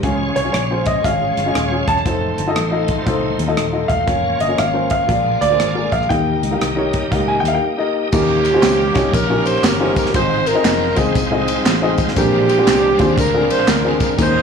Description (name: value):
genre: uptempo gospel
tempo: 119 BPM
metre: 4/4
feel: swing 64% on 8ths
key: unclear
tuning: A4 = 441 Hz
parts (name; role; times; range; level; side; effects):
- warm upright piano; accompaniment; 0.0-14.4 s; Ab2 to F5; -20 LUFS; left 4 dB; none
- bright tonewheel organ; sustained chords; 0.0-14.4 s; Ab3 to Eb5; -25 LUFS; right 4 dB; slow rotary speaker, chorus vibrato
- warm studio string section; sustained chords; 0.0-8.1 s; F3 to G4; -32 LUFS; left 1 dB; none
- fingered electric bass; bass; 0.0-14.4 s; Eb1 to Eb2; -23 LUFS; left 1 dB; tube saturation
- crisp fusion drum kit; drums; 0.0-14.3 s; crash cymbal, hi-hat, kick drum, ride cymbal, rim click, snare drum; -21 LUFS; right 1 dB; soft clipping on snare
- clear baby grand piano; melody; 0.4-7.6 s; Db5 to A5; -20 LUFS; equal; none
- clear saxophone section; melody; 8.1-14.4 s; Bb3 to C5; -17 LUFS; right 2 dB; none
- tambourine and handclaps; percussion; 8.1-14.3 s; none; -28 LUFS; right 3 dB; none
room: moderate large studio reverb, RT60 1.4 s, small room ambience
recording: blown-out, overdriven recording, overdrive, studio reverb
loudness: -14 LUFS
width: side -6 dB against mid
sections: 0.0-8.1 A section; 8.1-14.4 B section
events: break 7.6-8.1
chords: 0.0 Db; 2.1 F7; 4.1 Bbm/F; 5.1 Bb7; 6.1 Eb; 8.1 Eb9; 10.1 Ab6; 12.2 Bb9